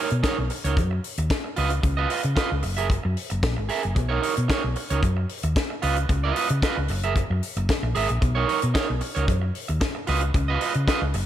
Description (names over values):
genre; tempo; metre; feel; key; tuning
disco; 113 BPM; 4/4; straight; unclear; A4 = 439 Hz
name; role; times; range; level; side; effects
electric guitar at the edge of break-up; accompaniment; 0.0-11.2 s; D#4 to E5; -27 LUFS; right 6 dB; spring reverb
hollow-body short-scale fingered electric bass; bass; 0.1-11.3 s; F#1 to C#3; -24 LUFS; equal; none
tight funk drum kit; drums; 0.1-11.3 s; hi-hat, kick drum, snare drum; -26 LUFS; left 1 dB; none
room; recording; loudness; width
light reverb, small room ambience; none; -22 LUFS; side -11 dB against mid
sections
0.0-11.3 A section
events
none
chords
0.0 Bmaj9; 0.8 F#7; 1.6 C#9; 2.6 F#9; 4.0 Bmaj9; 5.0 F#7; 5.8 C#9; 6.9 F#9; 8.2 Bmaj9; 9.3 F#7; 10.1 C#9